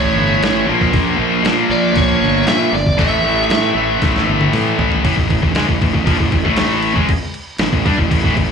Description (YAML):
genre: heavy metal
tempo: 117 BPM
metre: 4/4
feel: straight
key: A phrygian dominant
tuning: A4 = 440 Hz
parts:
  - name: lead guitar through a small cranked amp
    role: melody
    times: 0.0-4.5 s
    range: C#5 to E5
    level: -20 LUFS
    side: right 2 dB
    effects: overdrive, slapback echo, ping-pong delay
  - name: high-gain distorted guitar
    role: riff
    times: 0.0-8.5 s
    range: A2 to D4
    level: -20 LUFS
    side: right 12 dB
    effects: distortion
  - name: scooped high-gain guitar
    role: riff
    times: 0.0-8.5 s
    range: A2 to D4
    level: -18 LUFS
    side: left 13 dB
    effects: distortion, slapback echo
  - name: thick fuzz guitar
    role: riff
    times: 0.0-5.0 s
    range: A2 to F4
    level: -23 LUFS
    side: equal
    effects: distortion
  - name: fuzz fingered electric bass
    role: bass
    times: 0.0-8.5 s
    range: G1 to Bb2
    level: -20 LUFS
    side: equal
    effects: overdrive
  - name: boom bap sampler-style drum kit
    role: drums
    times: 0.4-8.5 s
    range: crash cymbal, hi-hat, kick drum, snare drum, toms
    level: -18 LUFS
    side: equal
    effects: none
room: little or no reverb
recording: live gig heard through the venue's PA, club reverb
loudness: -13 LUFS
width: side -6 dB against mid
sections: 0.0-5.0 A section; 5.0-8.5 B section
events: drum fill 4.0-5.0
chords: 0.0 A; 0.7 Bb; 3.0 A